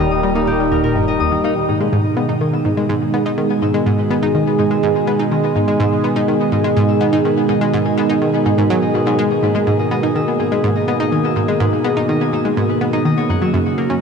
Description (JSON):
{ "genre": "ambient, sequencer-driven space music", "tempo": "124 BPM", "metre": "4/4", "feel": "straight", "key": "G# minor", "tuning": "A4 = 437 Hz", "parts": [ { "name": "sweeping resonant pad", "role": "sustained chords", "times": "0.0-14.0 s", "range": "Bb2 to G#4", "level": "-16 LUFS", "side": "right 2 dB", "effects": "wide subtle chorus, shimmer reverb" }, { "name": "concert harp", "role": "arpeggios", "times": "0.0-14.0 s", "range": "Eb4 to E6", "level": "-25 LUFS", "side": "moving between left 7 dB and equal", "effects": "auto-pan, shimmer reverb, ping-pong delay" }, { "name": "analog pluck", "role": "riff", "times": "0.0-13.9 s", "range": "Eb2 to D#4", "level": "-18 LUFS", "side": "left 1 dB", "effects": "chorus, shimmer reverb, ping-pong delay" }, { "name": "round analog bass", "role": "bass", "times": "0.0-1.5 s", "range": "Eb1", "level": "-28 LUFS", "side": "equal", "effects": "none" } ], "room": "wet huge ambient reverb, RT60 8.0 s", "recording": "none", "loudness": "-14 LUFS", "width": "side -6 dB against mid", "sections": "0.0-1.6 A section; 1.6-14.0 B section", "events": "fade-in on harp 1.6-14.0", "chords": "0.0 Eb; 1.6 G#m; 13.2 F#" }